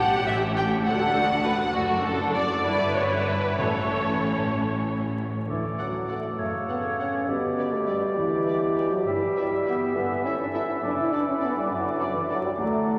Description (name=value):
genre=quick classical-period movement for symphony orchestra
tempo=67 BPM (dotted quarters)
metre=6/8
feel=rubato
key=D major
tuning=A4 = 440 Hz
part: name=warm studio violin section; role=melody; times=0.0-12.4 s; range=C#4 to F#5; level=-38 LUFS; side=equal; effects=none
part: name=warm studio violin section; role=second line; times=0.0-12.4 s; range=F#4 to G5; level=-30 LUFS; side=equal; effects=none
part: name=warm studio viola section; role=accompaniment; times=0.0-12.4 s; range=E4 to C#5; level=-35 LUFS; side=equal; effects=none
part: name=rich studio cello section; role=bass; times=0.0-13.0 s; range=D2 to D3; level=-35 LUFS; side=equal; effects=none
part: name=rich studio double bass section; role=bass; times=0.0-13.0 s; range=F#1 to D2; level=-37 LUFS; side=equal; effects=none
part: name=timpani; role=percussion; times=3.6-4.5 s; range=A2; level=-38 LUFS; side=equal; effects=none
part: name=clear oboe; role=second line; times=5.5-13.0 s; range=C#5 to E5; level=-35 LUFS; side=equal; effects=none
part: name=mellow clarinet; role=second line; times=5.5-13.0 s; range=F#4 to A4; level=-32 LUFS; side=equal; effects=none
part: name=dark French horn section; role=sustained chords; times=5.5-13.0 s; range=E3 to E4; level=-30 LUFS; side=equal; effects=none
part: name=warm bassoon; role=accompaniment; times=6.4-13.0 s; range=B2 to G3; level=-34 LUFS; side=equal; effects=none
room=wet cathedral reverb, RT60 5.0 s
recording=vinyl crackle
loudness=-25 LUFS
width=mono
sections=0.0-5.5 A section; 5.5-13.0 B section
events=none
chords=0.0 A; 0.9 D; 1.8 D/F#; 2.7 Em/G; 3.6 A; 5.5 D; 6.4 F#m; 7.3 G; 9.1 Em/G; 10.0 A5/G; 10.8 D/F#